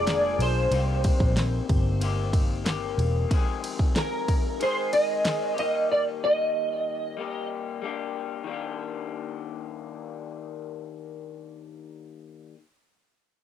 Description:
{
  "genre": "indie pop, bedroom pop",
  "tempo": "93 BPM",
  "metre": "4/4",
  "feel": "straight",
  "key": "Eb major",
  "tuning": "A4 = 440 Hz",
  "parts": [
    { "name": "clean lap steel guitar", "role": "melody", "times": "0.0-7.5 s", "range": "Bb4 to Eb5", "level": "-26 LUFS", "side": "right 1 dB", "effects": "ensemble chorus, cassette tape, tape echo" },
    { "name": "electric guitar through a small old amp", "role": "accompaniment", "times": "0.0-12.6 s", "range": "F2 to Ab4", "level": "-33 LUFS", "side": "left 9 dB", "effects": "lush chorus, warbly pitch drift, cassette tape" },
    { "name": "warbly lo-fi synth keys", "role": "accompaniment", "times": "0.0-0.8 s", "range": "Ab3 to Bb4", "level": "-37 LUFS", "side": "right 10 dB", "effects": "chorus, cassette tape" },
    { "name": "warbly tape-like pad", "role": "sustained chords", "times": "0.0-0.7 s", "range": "Ab4 to Bb5", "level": "-38 LUFS", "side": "right 1 dB", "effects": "none" },
    { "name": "vintage muted picked electric bass", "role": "bass", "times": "0.0-3.2 s", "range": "Fb1 to C2", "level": "-26 LUFS", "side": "equal", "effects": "none" },
    { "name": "pop drum kit", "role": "drums", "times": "0.1-5.7 s", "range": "kick drum, ride cymbal, snare drum", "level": "-26 LUFS", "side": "equal", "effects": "none" }
  ],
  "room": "light reverb",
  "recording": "home recording on cassette",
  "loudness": "-24 LUFS",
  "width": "side -10 dB against mid",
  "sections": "0.0-8.5 A section; 8.5-11.1 B section",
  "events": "none",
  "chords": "0.0 Bb7; 0.7 Cm7; 3.3 Fm7; 5.6 Ebmaj7"
}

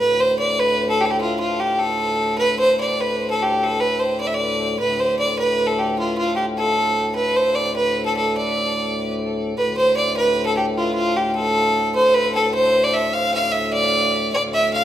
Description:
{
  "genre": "medieval dance",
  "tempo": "100 BPM (dotted quarters)",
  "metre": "6/8",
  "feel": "straight",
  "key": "D dorian",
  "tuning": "A4 = 436 Hz",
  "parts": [
    { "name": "clear fiddle", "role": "melody", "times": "0.0-14.8 s", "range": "F4 to F5", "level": "-18 LUFS", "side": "equal", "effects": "tape echo" },
    { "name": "hand-pumped harmonium", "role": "drone", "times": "0.0-14.8 s", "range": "D2 to A2", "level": "-26 LUFS", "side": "left 2 dB", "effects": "none" }
  ],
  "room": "wet recital hall reverb, RT60 1.7 s",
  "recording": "none",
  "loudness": "-17 LUFS",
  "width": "side -11 dB against mid",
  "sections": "0.0-9.6 A section; 9.6-14.8 A section",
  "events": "none",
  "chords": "none"
}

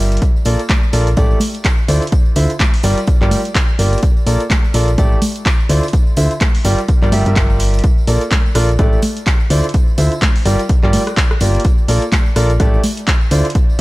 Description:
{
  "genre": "piano house",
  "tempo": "126 BPM",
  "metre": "4/4",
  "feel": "swing 58% on 16ths",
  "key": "D minor",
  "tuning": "A4 = 436 Hz",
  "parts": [
    { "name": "clear concert grand piano", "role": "riff", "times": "0.0-13.8 s", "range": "D3 to E5", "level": "-20 LUFS", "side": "right 1 dB", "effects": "sidechain pumping, tape echo" },
    { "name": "solid FM bass", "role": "bass", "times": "0.0-13.8 s", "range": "G1 to D2", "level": "-15 LUFS", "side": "equal", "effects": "sidechain pumping" },
    { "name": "punchy analog drum machine", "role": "drums", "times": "0.1-13.8 s", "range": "handclaps, hi-hat, rim click", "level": "-21 LUFS", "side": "equal", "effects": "none" },
    { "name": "tambourine and congas", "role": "percussion", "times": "0.1-13.8 s", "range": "none", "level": "-26 LUFS", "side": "equal", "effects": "none" },
    { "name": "electronic kick drum", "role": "drums", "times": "0.2-13.7 s", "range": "none", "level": "-14 LUFS", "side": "equal", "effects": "none" }
  ],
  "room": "digital ambience",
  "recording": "dry, gritty hardware recording",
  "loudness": "-12 LUFS",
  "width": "side -20 dB against mid",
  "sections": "0.0-13.8 A section",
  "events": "break 0.0",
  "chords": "0.2 Bbmaj7; 1.2 A5; 1.9 Dm9; 2.8 Gm7; 4.0 Bbmaj7; 5.0 A5; 5.7 Dm9; 6.6 Gm7; 7.8 Bbmaj7; 8.8 A5; 9.5 Dm9; 10.5 Gm7; 11.6 Bbmaj7; 12.6 A5"
}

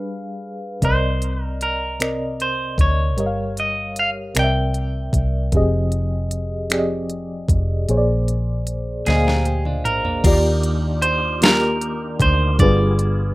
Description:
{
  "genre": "slow six-eight R&B",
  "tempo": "51 BPM (dotted quarters)",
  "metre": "6/8",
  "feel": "straight",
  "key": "Eb major",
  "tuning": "A4 = 440 Hz",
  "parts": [
    { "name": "mellow FM electric piano", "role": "accompaniment", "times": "0.0-13.3 s", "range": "Bb2 to F5", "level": "-23 LUFS", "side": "equal", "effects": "chorus, tremolo" },
    { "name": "semi-hollow electric guitar", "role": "melody", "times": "0.8-5.2, 9.1-13.3 s", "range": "Ab4 to G5", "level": "-23 LUFS", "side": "right 1 dB", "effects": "none" },
    { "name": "vintage muted fingered electric bass", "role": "bass", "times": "0.8-13.3 s", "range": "F1 to Eb2", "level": "-21 LUFS", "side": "equal", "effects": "none" },
    { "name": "smooth R&B drum kit", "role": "drums", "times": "0.8-13.2 s", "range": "crash cymbal, finger snaps, hi-hat, kick drum, snare drum, toms", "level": "-20 LUFS", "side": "equal", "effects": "none" },
    { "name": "clean electric guitar", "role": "second line", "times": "9.1-10.4 s", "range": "Bb3 to Bb4", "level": "-30 LUFS", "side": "right 3 dB", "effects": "none" },
    { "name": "percussive tonewheel organ", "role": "sustained chords", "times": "10.2-13.3 s", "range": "G3 to Ab4", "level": "-31 LUFS", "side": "equal", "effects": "overdrive, chorus vibrato, slow rotary speaker" }
  ],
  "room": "little or no reverb",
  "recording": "rough home demo mix",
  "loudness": "-17 LUFS",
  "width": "side -19 dB against mid",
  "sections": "0.0-10.2 A section; 10.2-13.3 B section",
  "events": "drum fill 9.1-10.2",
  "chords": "0.0 G7b9; 0.8 Cm9; 3.2 Gm7b5; 4.4 C7; 5.5 Fm9; 7.9 Bb7; 10.2 Ebmaj9; 12.6 G7b9"
}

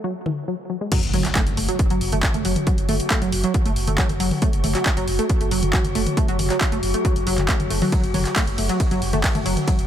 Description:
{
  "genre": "driving peak-time techno",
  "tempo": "137 BPM",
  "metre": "4/4",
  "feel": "straight",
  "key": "F# minor",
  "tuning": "A4 = 440 Hz",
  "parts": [
    { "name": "tight sequenced synth", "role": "riff", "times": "0.0-9.8 s", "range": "E3 to A3", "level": "-25 LUFS", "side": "right 1 dB", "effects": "chorus, sidechain pumping, dub echo" },
    { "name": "techno drum kit", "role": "drums", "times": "0.3-9.9 s", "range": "crash cymbal, handclaps, hi-hat, ride cymbal, toms", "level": "-25 LUFS", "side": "left 1 dB", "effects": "overdrive" },
    { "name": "metallic inharmonic drone", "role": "drone", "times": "1.5-9.9 s", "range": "F#3 to F#4", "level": "-28 LUFS", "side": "left 1 dB", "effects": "chorus, built-in reverb, sidechain pumping" },
    { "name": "electronic kick drum", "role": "drums", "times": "0.9-9.8 s", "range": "none", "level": "-22 LUFS", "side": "equal", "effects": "overdrive" },
    { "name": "impact", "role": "sound effects", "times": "0.9-2.7 s", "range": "none", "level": "-30 LUFS", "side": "equal", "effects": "none" },
    { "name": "saturated sub bass", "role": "bass", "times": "1.0-9.9 s", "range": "F#1", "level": "-26 LUFS", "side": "equal", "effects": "sidechain pumping, low-pass filter" }
  ],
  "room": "digital ambience",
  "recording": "none",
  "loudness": "-18 LUFS",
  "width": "side -10 dB against mid",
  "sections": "0.9-9.9 A section",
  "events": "drop 0.9-9.9; impact 0.9-2.7",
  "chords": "0.0 F#5"
}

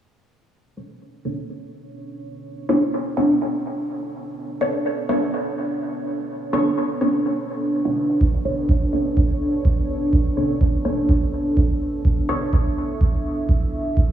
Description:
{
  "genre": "dub techno",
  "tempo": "125 BPM",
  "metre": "4/4",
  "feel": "straight",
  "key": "B minor",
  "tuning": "A4 = 440 Hz",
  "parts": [
    { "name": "dark analog pad", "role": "sustained chords", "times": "1.3-14.1 s", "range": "B3 to E5", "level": "-25 LUFS", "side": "right 1 dB", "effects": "chorus, sidechain pumping" },
    { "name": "filtered dub chord stab", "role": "stabs", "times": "0.8-12.5 s", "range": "B3 to C#5", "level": "-24 LUFS", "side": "equal", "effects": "phaser, sidechain pumping, dub echo" },
    { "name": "electronic kick drum", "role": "drums", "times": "8.2-14.1 s", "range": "none", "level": "-19 LUFS", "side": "right 1 dB", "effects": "none" }
  ],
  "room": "light reverb, digital ambience",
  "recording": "played on a big sound system in a bare room, stone room reverb, small room ambience",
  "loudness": "-19 LUFS",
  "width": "side -10 dB against mid",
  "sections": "0.5-14.1 A section",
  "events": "filter sweep on synth stab 0.5-14.1",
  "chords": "0.5 Bm9"
}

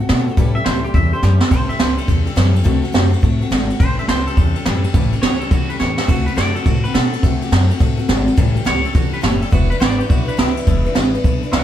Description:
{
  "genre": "rockabilly",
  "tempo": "210 BPM",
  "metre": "4/4",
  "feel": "swing 64% on 8ths",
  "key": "A major",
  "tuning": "A4 = 440 Hz",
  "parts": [
    { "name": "twangy electric guitar", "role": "melody", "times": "0.0-11.6 s", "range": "E4 to F#5", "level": "-25 LUFS", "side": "left 1 dB", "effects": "spring reverb" },
    { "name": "picked steel-string acoustic guitar", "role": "accompaniment", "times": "0.0-11.6 s", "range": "A2 to B4", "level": "-24 LUFS", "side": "left 3 dB", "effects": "none" },
    { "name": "upright bass", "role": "bass", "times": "0.1-11.6 s", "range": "E1 to B2", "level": "-18 LUFS", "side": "equal", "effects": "none" },
    { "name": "jazz brush drum kit", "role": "drums", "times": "0.1-11.6 s", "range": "crash cymbal, hi-hat, kick drum, ride cymbal, snare drum", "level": "-16 LUFS", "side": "right 1 dB", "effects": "none" }
  ],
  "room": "light reverb",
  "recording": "band playing live in one room",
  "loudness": "-14 LUFS",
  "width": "side -11 dB against mid",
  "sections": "0.0-1.5 A section; 1.5-11.6 B section",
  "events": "clean electric guitar solo 0.0-1.5; drum fill 1.2, 5.8",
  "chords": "0.4 A7; 2.7 D7; 3.8 A7; 6.1 D7; 8.4 A7; 9.5 E7"
}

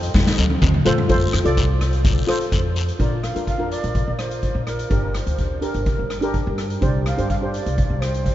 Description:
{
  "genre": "calypso",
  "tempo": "126 BPM",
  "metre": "4/4",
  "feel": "straight",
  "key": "Bb major",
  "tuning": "A4 = 442 Hz",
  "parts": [
    { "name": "breathy long shakuhachi", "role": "melody", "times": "0.0-8.3 s", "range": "Bb4 to F5", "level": "-30 LUFS", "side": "right 2 dB", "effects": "none" },
    { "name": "steel pan", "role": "accompaniment", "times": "0.0-8.0 s", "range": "D4 to D5", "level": "-25 LUFS", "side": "equal", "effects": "none" },
    { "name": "upright bass", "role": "bass", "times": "0.0-8.3 s", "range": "G1 to G2", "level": "-23 LUFS", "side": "equal", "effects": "none" },
    { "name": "street-band drum kit", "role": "drums", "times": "0.0-8.3 s", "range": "hi-hat, kick drum, rim click, snare drum, toms", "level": "-22 LUFS", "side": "equal", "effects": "none" },
    { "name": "guiro", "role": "percussion", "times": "0.1-2.9 s", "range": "none", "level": "-31 LUFS", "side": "left 5 dB", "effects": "none" }
  ],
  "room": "moderate huge ambient reverb, RT60 8.3 s",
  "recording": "in a vast, echoing space, nothing above 7.7 kHz",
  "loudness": "-18 LUFS",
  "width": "side -13 dB against mid",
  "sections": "0.0-1.1 A section; 1.1-3.0 B section; 3.0-8.3 C section",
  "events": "drum fill 0.1-1.1",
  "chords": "0.0 F7; 1.1 F; 3.0 Bb; 4.9 Gm; 6.8 Csus2"
}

